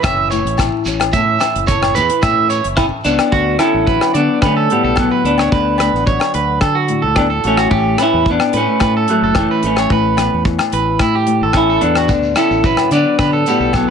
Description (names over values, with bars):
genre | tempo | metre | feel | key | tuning
highlife guitar band | 109 BPM | 4/4 | straight | D major | A4 = 440 Hz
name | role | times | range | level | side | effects
flamenco guitar | accompaniment | 0.0-13.9 s | A2 to A4 | -24 LUFS | left 8 dB | none
electric guitar at the edge of break-up | arpeggios | 0.0-13.9 s | E4 to E5 | -18 LUFS | right 7 dB | slapback echo
fingered electric bass | bass | 0.0-13.8 s | F#1 to D3 | -21 LUFS | equal | none
damped 70s drum kit | drums | 0.0-13.9 s | hi-hat, kick drum, rim click | -19 LUFS | equal | none
agogo bells | percussion | 0.0-13.9 s | none | -24 LUFS | left 10 dB | none
shekere | percussion | 0.0-3.2, 12.1-13.9 s | none | -26 LUFS | right 2 dB | none
semi-hollow electric guitar | melody | 2.8-13.9 s | E3 to E4 | -16 LUFS | left 2 dB | none
room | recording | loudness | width
light reverb, small room reverb | nothing above 11.0 kHz | -12 LUFS | side -7 dB against mid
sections
0.0-3.3 A section; 3.3-13.9 B section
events
clean electric guitar solo 0.0-3.3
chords
0.0 A; 3.3 D6; 7.7 Aadd9; 12.1 D6